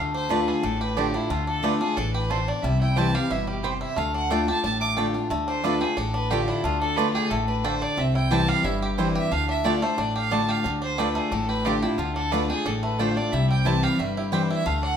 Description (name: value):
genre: bluegrass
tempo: 180 BPM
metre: 4/4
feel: straight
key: D dorian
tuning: A4 = 440 Hz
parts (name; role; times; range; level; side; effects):
- picked steel-string acoustic guitar; accompaniment; 0.0-15.0 s; G2 to F4; -26 LUFS; left 2 dB; none
- bluegrass banjo; arpeggios; 0.0-15.0 s; D3 to G4; -30 LUFS; left 2 dB; none
- upright bass; bass; 0.0-15.0 s; G1 to D2; -28 LUFS; left 1 dB; none
- clear fiddle; melody; 0.1-15.0 s; E4 to D6; -28 LUFS; right 4 dB; none
- mandolin; stabs; 0.3-14.4 s; A3 to A5; -30 LUFS; right 8 dB; none
room: moderate large studio reverb, RT60 1.2 s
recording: minimal, uncompressed stereo recording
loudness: -22 LUFS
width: side -8 dB against mid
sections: 0.0-5.3 A section; 5.3-15.0 A section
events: none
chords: 0.0 Dm; 2.6 C; 4.0 Dm; 8.0 C; 9.3 Dm; 13.3 C